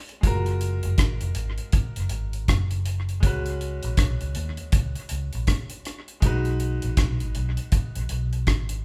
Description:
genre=lovers rock reggae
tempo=80 BPM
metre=4/4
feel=swing 61% on 16ths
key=F# major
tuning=A4 = 440 Hz
part: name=bright concert grand piano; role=accompaniment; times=0.0-8.8 s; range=G#3 to B4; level=-37 LUFS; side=equal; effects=none
part: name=deep reggae drum kit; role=drums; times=0.1-8.8 s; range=hi-hat, kick drum, rim click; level=-26 LUFS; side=equal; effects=none
part: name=vintage muted fingered electric bass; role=bass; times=0.2-8.8 s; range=E#1 to D#2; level=-29 LUFS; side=equal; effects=none
room=moderate large studio reverb, RT60 1.0 s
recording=band playing live in one room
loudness=-25 LUFS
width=mono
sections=0.0-8.8 A section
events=none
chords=0.2 F#maj9; 3.2 C#7sus4; 6.2 B6

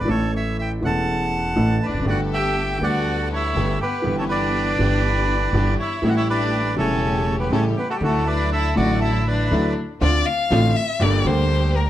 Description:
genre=tango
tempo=121 BPM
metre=4/4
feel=rubato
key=D major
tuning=A4 = 441 Hz
part: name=bandoneon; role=melody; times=0.0-9.7 s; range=F#4 to A5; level=-24 LUFS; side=right 1 dB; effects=none
part: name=warm concert grand piano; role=accompaniment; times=0.0-11.9 s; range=E1 to A4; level=-22 LUFS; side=equal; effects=none
part: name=upright bass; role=bass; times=0.0-11.9 s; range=E1 to D2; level=-24 LUFS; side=right 1 dB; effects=none
part: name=rich violin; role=second line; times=1.8-11.9 s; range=G3 to F5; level=-26 LUFS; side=left 4 dB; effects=none
part: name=warm studio string section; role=stabs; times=2.1-11.9 s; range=F#3 to A4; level=-31 LUFS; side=right 1 dB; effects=none
room=light reverb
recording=close, detailed microphones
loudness=-18 LUFS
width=side -12 dB against mid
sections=0.0-10.0 A section; 10.0-11.9 B section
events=violin solo 10.0-11.9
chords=0.1 A; 2.1 Gadd9; 4.1 Em/G; 6.0 A7; 8.0 Dadd9; 10.0 Dm7; 11.0 Gm

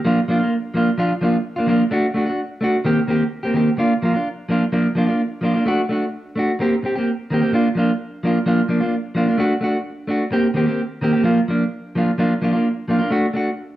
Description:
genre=highlife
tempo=128 BPM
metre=4/4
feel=straight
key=unclear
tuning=A4 = 440 Hz
part: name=clean electric guitar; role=solo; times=0.0-13.5 s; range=Eb3 to G4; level=-17 LUFS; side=equal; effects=spring reverb, cassette tape
room=wet studio reverb, RT60 0.6 s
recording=home recording on cassette, small room ambience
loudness=-17 LUFS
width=side -14 dB against mid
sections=0.0-4.7 A section; 4.7-13.8 B section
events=none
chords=0.0 Bb/F; 1.9 D; 2.8 Cm7; 3.8 Bb/F; 5.7 D; 6.6 Cm7; 7.5 Bb/F; 9.4 D; 10.3 Cm7; 11.3 Bb/F; 13.1 D

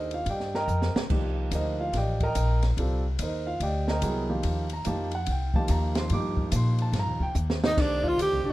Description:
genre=modal jazz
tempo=144 BPM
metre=4/4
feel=swing 64% on 8ths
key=C dorian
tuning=A4 = 440 Hz
part: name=warm grand piano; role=accompaniment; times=0.0-8.5 s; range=Eb3 to D6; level=-30 LUFS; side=right 2 dB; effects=none
part: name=upright bass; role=bass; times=0.0-8.5 s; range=A1 to Bb2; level=-27 LUFS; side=equal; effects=none
part: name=open jazz drum kit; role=drums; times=0.1-8.3 s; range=crash cymbal, hi-hat, kick drum, ride cymbal, snare drum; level=-32 LUFS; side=equal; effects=none
part: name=breathy alto saxophone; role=second line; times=7.6-8.5 s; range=D4 to G4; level=-30 LUFS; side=left 1 dB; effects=none
part: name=breathy tenor saxophone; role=melody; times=7.7-8.5 s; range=D4 to G4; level=-25 LUFS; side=right 1 dB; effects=none
room=small room reverb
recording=rough home demo mix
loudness=-24 LUFS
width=side -16 dB against mid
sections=0.0-7.8 A section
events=drum fill 0.7-1.1, 7.4-7.8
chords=0.0 Cm9; 7.8 Cmadd9

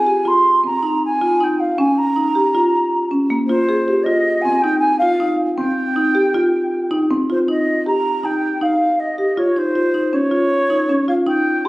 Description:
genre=contemporary instrumental, contemporary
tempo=158 BPM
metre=5/4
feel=straight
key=unclear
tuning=A4 = 440 Hz
part: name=baroque flute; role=melody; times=0.0-11.7 s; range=C5 to C6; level=-18 LUFS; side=right 1 dB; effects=none
part: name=marimba with medium mallets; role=arpeggios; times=0.0-11.7 s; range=Bb3 to Ab4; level=-17 LUFS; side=equal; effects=none
room=moderate concert hall reverb, RT60 2.2 s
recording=recorded on a phone in the room, club reverb, compression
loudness=-15 LUFS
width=side -19 dB against mid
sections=0.0-7.5 A section; 7.5-11.7 B section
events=none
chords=0.0 Fm7; 1.8 Bbm; 3.7 Fm7; 5.6 Cm; 7.5 Ebadd9; 9.4 Dbmaj7

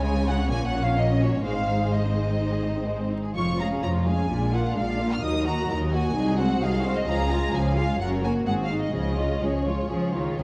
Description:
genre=quick classical-period movement for string orchestra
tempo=127 BPM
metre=4/4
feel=straight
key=Db major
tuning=A4 = 440 Hz
part: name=warm symphonic violin section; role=melody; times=0.0-10.4 s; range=Db5 to F6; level=-33 LUFS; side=equal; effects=none
part: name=warm symphonic violin section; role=second line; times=0.0-10.4 s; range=Ab3 to Ab5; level=-35 LUFS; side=equal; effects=none
part: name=warm symphonic viola section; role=accompaniment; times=0.0-10.4 s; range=F3 to Gb4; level=-31 LUFS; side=equal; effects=none
part: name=rich symphonic cello section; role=bass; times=0.0-10.4 s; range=C2 to Ab3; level=-31 LUFS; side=equal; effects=none
part: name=warm symphonic double bass section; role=bass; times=0.0-10.4 s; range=F1 to Eb2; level=-31 LUFS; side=equal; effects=none
room=moderate scoring stage reverb, RT60 1.6 s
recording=dark, warm production, vinyl crackle, nothing above 10.7 kHz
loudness=-25 LUFS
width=mono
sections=0.0-10.4 A section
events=none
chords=0.0 Db; 0.5 Gb/Bb; 1.5 Ab; 3.4 Db/F; 4.3 Bb7; 5.2 Ebm; 6.2 Ab7/C; 7.1 Db; 8.0 Gb; 8.5 Ab7; 8.9 Db

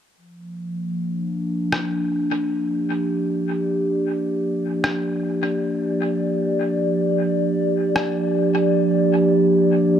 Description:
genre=ambient dub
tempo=77 BPM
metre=4/4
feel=swing 57% on 16ths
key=G minor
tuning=A4 = 440 Hz
part: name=warbly tape-like pad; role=sustained chords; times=0.4-10.0 s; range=F3 to D5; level=-19 LUFS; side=equal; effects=chorus, built-in reverb
part: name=electronic rim click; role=drums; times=1.7-8.1 s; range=none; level=-27 LUFS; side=left 1 dB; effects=dub echo
room=light reverb, digital ambience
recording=echo-heavy mix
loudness=-19 LUFS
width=side -9 dB against mid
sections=0.2-10.0 A section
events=filter sweep on ambient pad 0.2-10.0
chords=0.2 Gm7

